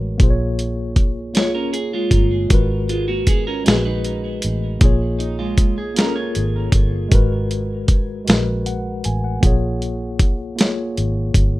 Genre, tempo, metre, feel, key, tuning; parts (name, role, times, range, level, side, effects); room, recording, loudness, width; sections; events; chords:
slow six-eight R&B; 52 BPM (dotted quarters); 6/8; straight; A4 = 440 Hz
mellow tine electric piano; accompaniment; 0.0-11.6 s; G#3 to G#5; -24 LUFS; left 2 dB; medium stereo tremolo
vintage muted fingered electric bass; bass; 0.0-11.6 s; G1 to A#1; -22 LUFS; equal
dusty soul sampler-style drum kit; drums; 0.2-11.5 s; hi-hat, kick drum, snare drum; -15 LUFS; equal
clean electric guitar; second line; 1.4-7.1 s; G#3 to C#5; -24 LUFS; right 3 dB; phaser, tape echo
light reverb; rough home demo mix; -16 LUFS; side -18 dB against mid
0.0-11.6 A section
0.2 A#m7; 2.5 G#m9; 4.8 A#m7; 7.1 G#m9; 9.4 A#m7